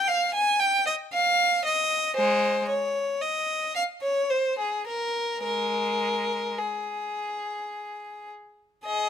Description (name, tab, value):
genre	classical, baroque-style suite movement for unaccompanied violin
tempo	52-58 BPM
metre	3/4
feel	rubato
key	Ab major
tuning	A4 = 442 Hz
part	clear violin	solo	0.0-9.1 s	Ab3 to Ab5	-24 LUFS	equal	none
room	light reverb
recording	close, detailed microphones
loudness	-24 LUFS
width	side -8 dB against mid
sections	0.0-8.9 A section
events	none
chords	none